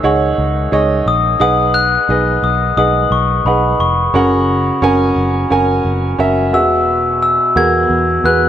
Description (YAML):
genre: pop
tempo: 88 BPM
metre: 4/4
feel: swing 56% on 16ths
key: B major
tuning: A4 = 438 Hz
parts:
  - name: clear upright piano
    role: accompaniment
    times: 0.0-8.5 s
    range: G#2 to G#5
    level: -15 LUFS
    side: right 2 dB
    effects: none
  - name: vintage muted picked electric bass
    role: bass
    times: 0.0-8.5 s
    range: E1 to E2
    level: -18 LUFS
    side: equal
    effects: none
  - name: glockenspiel with rubber mallets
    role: melody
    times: 1.1-8.5 s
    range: B5 to G#6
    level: -16 LUFS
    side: left 4 dB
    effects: none
room: moderate plate reverb, RT60 3.4 s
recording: none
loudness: -11 LUFS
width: side -10 dB against mid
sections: 0.0-8.5 A section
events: none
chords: 0.0 C#madd9; 1.4 B6; 4.1 F#; 6.5 Eadd9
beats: 0.04 0.72 | 1.41 2.09 2.77 3.46 | 4.14 4.83 5.51 6.19 | 6.87 7.56 8.24